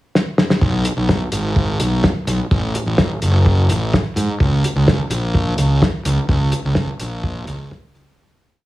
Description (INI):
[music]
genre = indie rock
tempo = 127 BPM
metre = 4/4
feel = straight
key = unclear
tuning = A4 = 440 Hz
[part]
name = cloth-damped thuddy drum kit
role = drums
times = 0.2-8.1 s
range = hi-hat, kick drum, snare drum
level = -17 LUFS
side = equal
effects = none
[part]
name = fuzz fingered electric bass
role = bass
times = 0.6-8.1 s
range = F#1 to G#2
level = -17 LUFS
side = equal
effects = overdrive
[sound]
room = light reverb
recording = heavily compressed radio sound, small room reverb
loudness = -15 LUFS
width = side -17 dB against mid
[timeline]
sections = 0.0-0.6 pickup bar; 0.6-8.2 pre-chorus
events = drum fill 0.1-0.6; fade-out 6.3-8.2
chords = none